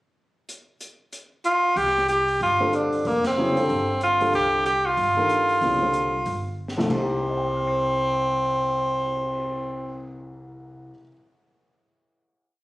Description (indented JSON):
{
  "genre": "modal jazz",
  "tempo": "188 BPM",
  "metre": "4/4",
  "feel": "swing 61% on 8ths",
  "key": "C dorian",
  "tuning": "A4 = 443 Hz",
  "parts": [
    { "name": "open jazz drum kit", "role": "drums", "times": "0.5-9.4 s", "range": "crash cymbal, cymbal swell, hi-hat, kick drum, ride cymbal, snare drum", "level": "-39 LUFS", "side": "equal", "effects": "none" },
    { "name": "breathy tenor saxophone", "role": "melody", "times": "1.5-10.2 s", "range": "Bb3 to G4", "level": "-21 LUFS", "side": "equal", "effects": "none" },
    { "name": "upright bass", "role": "bass", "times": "1.8-10.9 s", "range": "F1 to C2", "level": "-34 LUFS", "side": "equal", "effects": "none" },
    { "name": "warm grand piano", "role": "accompaniment", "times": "2.6-11.1 s", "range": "C2 to C7", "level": "-28 LUFS", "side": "left 1 dB", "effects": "none" }
  ],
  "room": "light reverb",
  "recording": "recorded on a phone in the room, club reverb",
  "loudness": "-20 LUFS",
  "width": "side -18 dB against mid",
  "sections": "0.5-1.8 pickup bar; 1.8-6.9 A section; 6.9-9.4 final chord",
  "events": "band accent 3.2; drum fill 6.6-6.9",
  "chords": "0.5 N.C.; 1.8 Csus4; 6.9 Cm",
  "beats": "| 0.48 0.80 1.12 1.44 | 1.76 2.08 2.40 2.73 | 3.05 3.37 3.69 4.01 | 4.33 4.66 4.98 5.30 | 5.62 5.94 6.26 6.58 | 6.90 7.21 7.53 7.85 | 8.17 8.49 8.80 9.12"
}